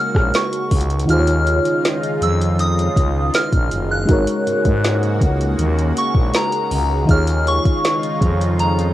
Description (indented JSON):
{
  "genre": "contemporary R&B",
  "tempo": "80 BPM",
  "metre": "4/4",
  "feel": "straight",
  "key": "Eb minor",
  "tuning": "A4 = 441 Hz",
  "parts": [
    { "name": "soft synth bell", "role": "melody", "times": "0.0-8.7 s", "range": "Bb5 to Gb6", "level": "-22 LUFS", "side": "equal", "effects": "chorus, phaser, cassette tape, analog delay" },
    { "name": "mellow FM electric piano", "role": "accompaniment", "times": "0.0-8.9 s", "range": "Eb3 to Db5", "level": "-21 LUFS", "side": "equal", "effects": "chorus, phaser, cassette tape" },
    { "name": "lush unison pad", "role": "sustained chords", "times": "0.0-8.9 s", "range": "Db3 to Gb4", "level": "-26 LUFS", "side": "equal", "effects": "chorus, phaser, cassette tape" },
    { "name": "growling FM bass", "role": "bass", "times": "0.1-8.9 s", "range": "Gb1 to Ab2", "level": "-19 LUFS", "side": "equal", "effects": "none" },
    { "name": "smooth R&B drum kit", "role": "drums", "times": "0.1-8.9 s", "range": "hi-hat, kick drum, rim click, snare drum", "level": "-19 LUFS", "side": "equal", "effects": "cassette tape" }
  ],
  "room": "light reverb",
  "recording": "home recording on cassette",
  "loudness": "-15 LUFS",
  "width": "side -14 dB against mid",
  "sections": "0.0-8.9 A section",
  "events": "kick muted 1.1-2.6",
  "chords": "0.0 Ab9sus4; 1.1 Eb9sus4; 4.1 Ab9sus4; 7.1 Eb9sus4"
}